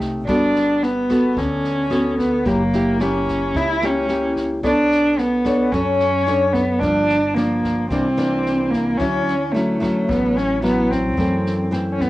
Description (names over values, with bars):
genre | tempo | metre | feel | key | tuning
bossa nova | 110 BPM | 4/4 | straight | unclear | A4 = 442 Hz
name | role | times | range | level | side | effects
nylon-string guitar | accompaniment | 0.0-12.1 s | F#2 to C#5 | -22 LUFS | left 1 dB | cassette tape
upright bass | bass | 0.0-12.1 s | F#1 to F#2 | -29 LUFS | equal | none
open jazz drum kit | drums | 0.0-12.1 s | kick drum, rim click, snare drum | -34 LUFS | equal | cassette tape
dark cello | melody | 0.3-12.1 s | A3 to E4 | -18 LUFS | equal | cassette tape
room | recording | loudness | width
moderate booth ambience, RT60 0.2 s | home recording on cassette | -16 LUFS | side -17 dB against mid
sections
0.0-12.1 A section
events
none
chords
0.3 Gmaj9; 2.5 F#7b9; 4.6 Bm9; 6.8 Gm7; 7.9 C9; 9.0 Dmaj9; 11.2 F#m7b5